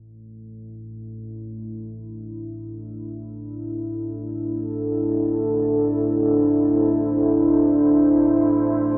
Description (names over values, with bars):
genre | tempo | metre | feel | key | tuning
dark ambient drone | free time | none | none | A minor | A4 = 440 Hz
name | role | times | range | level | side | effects
deep dark ambient pad | sustained chords | 2.3-9.0 s | D4 to C5 | -18 LUFS | equal | chorus, built-in reverb
deep rumbling drone | drone | 0.0-9.0 s | A1 to A2 | -33 LUFS | equal | built-in reverb, lush chorus
room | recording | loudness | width
wet huge ambient reverb, RT60 7.6 s | small speaker sound | -17 LUFS | side -25 dB against mid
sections
0.0-9.0 A section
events
none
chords
0.0 Am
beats
free time